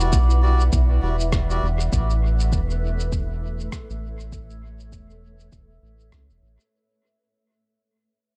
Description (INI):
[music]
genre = ambient dub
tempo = 100 BPM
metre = 4/4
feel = swing 59% on 16ths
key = unclear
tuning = A4 = 438 Hz
[part]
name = granular cloud pad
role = sustained chords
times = 0.0-6.7 s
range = A3 to F#5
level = -36 LUFS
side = equal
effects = built-in reverb
[part]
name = melodica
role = stabs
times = 0.0-1.7 s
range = G3 to D5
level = -32 LUFS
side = equal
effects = dub echo
[part]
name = round analog bass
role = bass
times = 0.0-6.6 s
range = E1 to C#2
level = -23 LUFS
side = equal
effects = tube saturation
[part]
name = electronic cabasa and rim click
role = drums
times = 0.0-6.7 s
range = none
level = -36 LUFS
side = equal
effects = dub echo
[part]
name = electronic kick drum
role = drums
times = 0.1-6.3 s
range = none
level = -26 LUFS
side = equal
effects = none
[sound]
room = little or no reverb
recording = echo-heavy mix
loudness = -21 LUFS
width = mono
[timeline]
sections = 0.0-6.7 A section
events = fade-out 0.0-6.7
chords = 0.0 Em9; 1.9 A